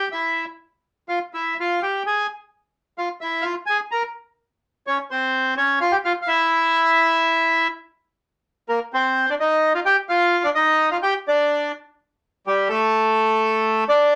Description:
tango; 127 BPM; 4/4; rubato; A4 = 440 Hz
bandoneon; solo; 0.0-14.2 s; G3 to Bb5; -20 LUFS; equal
moderate club reverb, RT60 0.5 s; -21 LUFS; mono
0.0-8.2 A section; 8.2-14.2 B section
0.0 Em; 0.6 Fm; 2.5 Bb5; 4.4 Dbmaj7; 6.3 N.C.; 8.2 Bbsus2; 9.2 Cmadd9; 10.1 Dm; 11.0 G5; 12.0 Gsus2; 12.9 N.C.

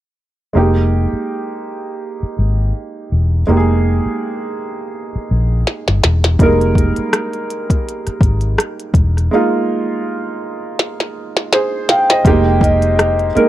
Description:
R&B, neo-soul; 82 BPM; 4/4; swing 56% on 16ths; F minor; A4 = 440 Hz
warm upright piano; accompaniment; 0.5-13.5 s; G3 to F5; -18 LUFS; right 2 dB
vintage muted fingered electric bass; bass; 0.6-13.4 s; E1 to Bb1; -15 LUFS; left 1 dB
minimal click drum kit; drums; 5.7-13.5 s; hi-hat, kick drum, rim click, snare drum; -14 LUFS; left 1 dB; overdrive
vibraphone with soft mallets; melody; 11.9-13.5 s; Eb5 to G5; -16 LUFS; left 1 dB
digital ambience; dry, close 1970s-style studio recording; -13 LUFS; side -14 dB against mid
0.5-12.2 A section; 12.2-13.5 B section
drum fill 5.7-6.4, 10.8-12.2
0.5 Fm11

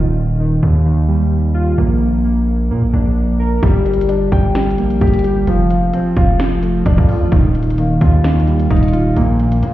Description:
hip hop, trap; 130 BPM; 4/4; half-time; A4 = 440 Hz
warbly lo-fi synth keys; arpeggios; 0.0-9.7 s; Eb3 to Bb4; -18 LUFS; right 1 dB; chorus, ping-pong delay
distorted 808-style bass; bass; 0.0-9.7 s; Eb1 to Bb2; -16 LUFS; equal; distortion
dark concert grand piano; accompaniment; 3.6-9.7 s; Bb2 to G5; -19 LUFS; left 2 dB
trap drum kit; drums; 3.6-9.7 s; hi-hat, kick drum, snare drum; -15 LUFS; equal
digital ambience; heard muffled through a wall, stone room reverb, EQ; -12 LUFS; side -14 dB against mid
0.0-9.7 A section
break 0.0-3.6
0.0 Ebadd9; 1.8 Bb; 3.6 Gm; 5.5 F6; 7.3 Ebadd9; 9.2 N.C.

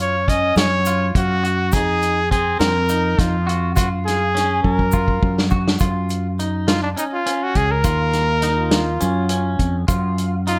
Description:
progressive instrumental, band music in an uneven meter; 206 BPM (eighths); 7/8; straight; A4 = 440 Hz
warm trumpet; melody; 0.0-10.6 s; D4 to Eb5; -22 LUFS; equal; slapback echo, plate reverb
clean electric guitar; arpeggios; 0.0-10.6 s; C4 to Gb4; -29 LUFS; equal; slapback echo, plate reverb
fretless electric bass; bass; 0.0-10.6 s; Db2 to Gb2; -24 LUFS; equal; analog chorus
vintage drum kit; drums; 0.0-10.6 s; hi-hat, kick drum, snare drum; -23 LUFS; equal
egg shaker; percussion; 0.6-10.6 s; -37 LUFS; equal
warm flugelhorn; second line; 8.4-9.7 s; Eb4 to F4; -28 LUFS; equal; plate reverb
light reverb; -19 LUFS; mono
0.0-5.8 A section; 5.8-10.6 B section
drum fill 4.6-5.8; trumpet solo 5.8-10.6
0.0 Gb5; 1.7 Fm7; 3.8 Gbmaj7; 5.8 Gb5; 7.8 Ebm9; 9.9 Gb5

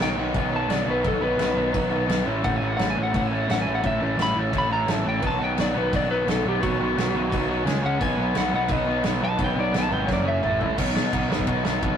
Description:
punk rock; 172 BPM; 4/4; straight; A4 = 440 Hz
lightly driven lead guitar; melody; 0.0-10.6 s; F#4 to B5; -26 LUFS; left 1 dB
crunchy overdriven guitar; riff; 0.0-12.0 s; A2 to E5; -27 LUFS; right 3 dB
raw garage guitar; riff; 0.0-12.0 s; F#2 to C#4; -29 LUFS; left 5 dB; overdrive
fuzz picked electric bass; bass; 0.0-12.0 s; F#1 to B2; -28 LUFS; equal; overdrive
loose indie drum kit; drums; 0.0-11.9 s; crash cymbal, kick drum, ride cymbal, snare drum, toms; -28 LUFS; equal
moderate booth ambience, RT60 0.2 s; rough rehearsal-room recording; -21 LUFS; side -8 dB against mid
0.0-10.8 A section; 10.8-12.0 B section
half time 0.0-10.8; lead electric guitar solo 0.0-10.8; drum fill 10.1-10.8
0.0 B; 2.3 A; 5.2 B; 7.7 C#5; 8.0 B; 10.1 F#5; 10.4 A5; 10.8 B

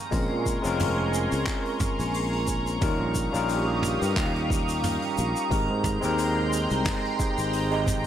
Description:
sunset chillout; 89 BPM; 4/4; swing 55% on 16ths; A4 = 440 Hz
lush unison pad; sustained chords; 0.0-8.1 s; Ab3 to Eb6; -32 LUFS; equal; chorus, phaser
drifting glass-harmonics texture; texture; 0.0-8.1 s; Bb5; -33 LUFS; right 3 dB; chorus, built-in reverb
overdriven tine electric piano; accompaniment; 0.1-8.1 s; G3 to Eb5; -28 LUFS; equal; auto-pan, analog delay
sustaining fretless electric bass; bass; 0.1-8.1 s; F1 to Bb2; -29 LUFS; equal
electronic kick drum; drums; 0.1-8.0 s; -30 LUFS; equal; overdrive
soft brush drum kit; drums; 0.1-8.0 s; handclaps, hi-hat, shaker, toms; -34 LUFS; equal
light reverb, studio reverb; dry, gritty hardware recording; -23 LUFS; side -10 dB against mid
0.0-8.1 A section
0.0 Bbm9; 2.8 Eb9; 5.5 Abmaj9

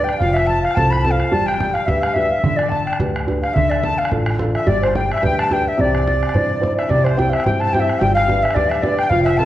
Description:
celtic folk, Celtic reel; 216 BPM; 4/4; swing 55% on 8ths; A4 = 440 Hz
wooden flute; melody; 0.0-9.4 s; C5 to B5; -20 LUFS; left 1 dB
accordion; second line; 0.0-9.4 s; C5 to B5; -25 LUFS; left 2 dB; light tremolo tuning
warm upright piano; accompaniment; 0.0-9.4 s; C3 to C5; -21 LUFS; right 1 dB
upright bass; bass; 0.0-9.4 s; F1 to G2; -22 LUFS; equal
bodhran; percussion; 0.1-9.4 s; -24 LUFS; right 1 dB
concert harp; second line; 6.8-9.4 s; C5 to A5; -26 LUFS; right 2 dB
wet recital hall reverb, RT60 1.3 s; worn, warbling old tape, cassette tape, warbly pitch drift; -15 LUFS; side -13 dB against mid
0.0-6.9 A section; 6.9-9.4 A section
0.2 F; 1.3 G; 3.6 Dm; 4.7 G; 5.8 Cadd9; 6.9 C; 8.0 G

